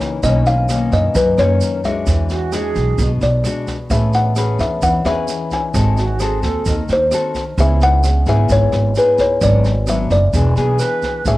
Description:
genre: bossa nova.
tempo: 131 BPM.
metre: 4/4.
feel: straight.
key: unclear.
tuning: A4 = 440 Hz.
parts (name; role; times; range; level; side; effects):
kalimba; melody; 0.0-11.4 s; B4 to G#5; -18 LUFS; left 1 dB; cassette tape.
nylon-string guitar; accompaniment; 0.0-11.4 s; F#2 to B4; -21 LUFS; left 4 dB; cassette tape.
jazz brush drum kit; drums; 0.0-11.4 s; kick drum, rim click, snare drum; -25 LUFS; right 1 dB; cassette tape.
tube shaker; percussion; 0.0-11.4 s; none; -33 LUFS; right 8 dB; none.
upright bass; bass; 0.2-11.4 s; E1 to F#2; -16 LUFS; right 1 dB; none.
bright alto flute; second line; 2.3-3.1, 6.0-6.8, 10.6-11.3 s; F#4 to B4; -23 LUFS; right 6 dB; cassette tape.
room: little or no reverb.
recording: home recording on cassette.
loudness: -14 LUFS.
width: side -17 dB against mid.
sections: 0.0-11.3 A section.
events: none.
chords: 0.2 Bmaj9; 2.1 E9; 3.9 Amaj9; 5.7 G#7b9; 7.6 C#m7; 9.4 G#m7b5; 10.3 E7.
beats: | 0.23 0.69 1.15 1.61 | 2.06 2.52 2.98 3.44 | 3.90 4.36 4.82 5.28 | 5.74 6.20 6.66 7.12 | 7.58 8.04 8.50 8.96 | 9.41 9.87 10.33 10.79 | 11.25.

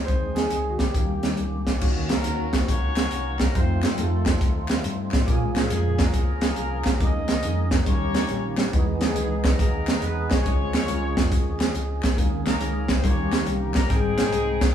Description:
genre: uptempo gospel.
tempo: 139 BPM.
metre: 4/4.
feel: swing 66% on 8ths.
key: unclear.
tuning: A4 = 440 Hz.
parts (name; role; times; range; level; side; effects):
warm concert grand piano; melody; 0.0-1.6 s; Gb4 to C5; -30 LUFS; right 1 dB; none.
percussive tonewheel organ; sustained chords; 0.0-14.7 s; Eb3 to G5; -32 LUFS; right 2 dB; overdrive, slow rotary speaker.
fingered electric bass; bass; 0.0-14.7 s; G1 to G2; -28 LUFS; equal; none.
mellow tine electric piano; accompaniment; 0.1-14.7 s; Ab2 to Db5; -30 LUFS; left 2 dB; medium stereo tremolo.
crisp fusion drum kit; drums; 0.1-14.7 s; crash cymbal, hi-hat, kick drum, snare drum; -22 LUFS; equal; none.
mellow horn section; melody; 2.1-14.7 s; Ab3 to Eb5; -30 LUFS; left 2 dB; none.
group handclap; percussion; 2.1-14.7 s; none; -39 LUFS; left 3 dB; none.
room: light reverb.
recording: band playing live in one room, small room ambience.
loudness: -21 LUFS.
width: side -9 dB against mid.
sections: 0.0-1.8 A section; 1.8-14.7 B section.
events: none.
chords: 0.1 Ab/Eb; 1.0 Eb7; 1.8 Ebm7; 3.5 F7; 5.3 Bbm7; 7.0 Eb7sus4; 7.9 Eb7; 8.7 Emaj7; 10.5 Dbmaj7; 12.2 Eb7sus4; 13.0 Eb7; 13.9 Abmaj7.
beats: | 0.09 0.52 0.95 1.39 | 1.82 2.25 2.68 3.12 | 3.55 3.98 4.41 4.84 | 5.28 5.71 6.14 6.57 | 7.00 7.44 7.87 8.30 | 8.73 9.16 9.59 10.03 | 10.46 10.89 11.32 11.75 | 12.18 12.61 13.04 13.47 | 13.90 14.34.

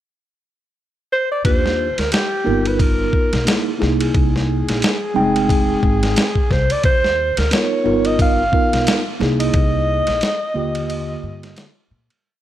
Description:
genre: hip hop, jazz-hop.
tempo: 89 BPM.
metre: 4/4.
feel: swing 57% on 16ths.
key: Eb major.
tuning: A4 = 440 Hz.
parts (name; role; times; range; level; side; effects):
mellow alto saxophone; melody; 1.1-11.9 s; G4 to F5; -21 LUFS; equal; slapback echo.
mellow tine electric piano; accompaniment; 1.4-11.7 s; D3 to G5; -20 LUFS; right 2 dB; medium stereo tremolo.
upright bass; bass; 1.4-12.1 s; F1 to Bb2; -22 LUFS; left 1 dB; none.
dusty soul sampler-style drum kit; drums; 1.4-12.2 s; hi-hat, kick drum, ride cymbal, snare drum; -19 LUFS; equal; none.
room: light reverb.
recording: none.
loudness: -15 LUFS.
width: side -12 dB against mid.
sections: 0.0-1.5 pickup bar; 1.5-12.2 A section.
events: fade-out 9.5-12.2; break 10.9-12.2.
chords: 0.0 N.C.; 1.5 Ebmaj7; 2.5 G7alt; 3.8 C7alt; 5.2 Fm9; 6.8 Eb5; 7.9 G7alt; 9.2 C7alt; 10.6 Ebmaj7.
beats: 0.10 0.78 | 1.45 2.13 2.80 3.47 | 4.15 4.82 5.50 6.17 | 6.84 7.52 8.19 8.87 | 9.54 10.22 10.89 11.56.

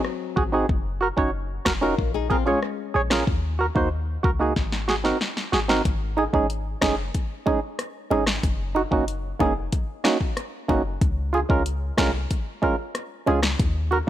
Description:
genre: dancehall.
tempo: 93 BPM.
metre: 4/4.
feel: straight.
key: Db major.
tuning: A4 = 441 Hz.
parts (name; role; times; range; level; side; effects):
flamenco guitar; arpeggios; 0.0-3.2 s; Gb3 to Bb4; -29 LUFS; left 12 dB; none.
deep house drum kit; drums; 0.0-13.7 s; hi-hat, kick drum, rim click, snare drum; -25 LUFS; left 1 dB; vintage 12-bit sampler grit.
percussive organ stab; accompaniment; 0.4-14.1 s; Ab3 to Db5; -24 LUFS; right 3 dB; chorus.
clean 808-style bass; bass; 0.4-14.0 s; F1 to Eb2; -27 LUFS; left 1 dB; none.
bongos; percussion; 6.2-14.1 s; none; -34 LUFS; left 10 dB; none.
room: little or no reverb.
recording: none.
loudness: -21 LUFS.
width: side -12 dB against mid.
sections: 0.0-5.9 A section; 5.9-14.1 B section.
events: drum fill 4.6-5.9.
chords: 0.0 Ab7; 0.7 Gb6; 2.0 Bbm7; 3.3 Ebm; 4.6 Ab7; 5.9 Absus4; 8.4 Gb6; 11.0 Db.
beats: 0.05 | 0.69 1.34 1.98 2.63 | 3.27 3.92 4.56 5.21 | 5.85 6.50 7.14 7.79 | 8.43 9.08 9.72 10.37 | 11.02 11.66 12.30 12.95 | 13.60.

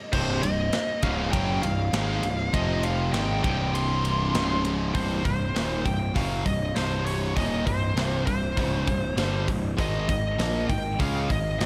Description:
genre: heavy metal.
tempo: 99 BPM.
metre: 4/4.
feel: straight.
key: C phrygian.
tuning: A4 = 440 Hz.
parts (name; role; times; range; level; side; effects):
high-gain lead guitar; melody; 0.1-11.7 s; C5 to C6; -32 LUFS; equal; distortion.
distorted electric guitar; riff; 0.1-4.9 s; C2 to Ab3; -38 LUFS; equal; none.
sludgy distorted guitar; riff; 0.1-11.7 s; C2 to Db4; -33 LUFS; equal; overdrive, slapback echo.
tight distorted guitar; riff; 0.1-11.7 s; C2 to Db4; -34 LUFS; equal; distortion.
fuzz picked electric bass; bass; 0.1-11.7 s; C1 to Db2; -32 LUFS; equal; overdrive.
tight metal drum kit; drums; 0.1-11.7 s; crash cymbal, hi-hat, kick drum, ride cymbal, snare drum; -32 LUFS; equal; none.
room: moderate lush hall reverb, RT60 2.5 s.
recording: big arena sound.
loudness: -26 LUFS.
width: mono.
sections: 0.0-5.0 A section; 5.0-11.7 B section.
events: none.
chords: 0.0 Cm; 2.5 F5; 3.1 Cm; 4.3 Db5; 5.0 Cm; 9.8 Ab5.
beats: | 0.13 0.73 1.33 1.94 | 2.54 3.14 3.75 4.35 | 4.95 5.55 6.16 6.76 | 7.37 7.97 8.58 9.18 | 9.79 10.39 11.00 11.61.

